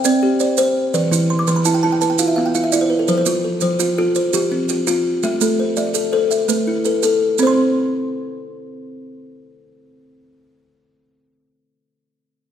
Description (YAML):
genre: southern african traditional, mbira-style interlocking cycle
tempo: 112 BPM (dotted quarters)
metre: 12/8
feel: straight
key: unclear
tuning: A4 = 440 Hz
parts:
  - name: buzzing kalimba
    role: arpeggios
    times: 0.0-11.0 s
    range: E3 to C6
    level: -18 LUFS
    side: left 2 dB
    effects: none
  - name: kalimba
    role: arpeggios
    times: 0.0-11.0 s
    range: E3 to D6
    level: -20 LUFS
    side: right 3 dB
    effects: none
  - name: maracas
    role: percussion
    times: 0.0-7.6 s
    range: none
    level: -25 LUFS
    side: right 8 dB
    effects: none
room: wet recital hall reverb, RT60 1.9 s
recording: recorded in a church or concert hall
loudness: -15 LUFS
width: side -9 dB against mid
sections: 0.0-7.4 A section; 7.4-11.7 B section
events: kalimba fill 1.1-3.1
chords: 0.0 C; 0.9 E5; 3.1 F; 5.2 Am; 7.4 N.C.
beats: 0.41 | 0.94 1.48 2.02 2.55 | 3.09 3.63 4.16 4.70 | 5.24 5.78 6.32 6.85 | 7.39 7.93 8.47 9.01 | 9.55 10.09 10.63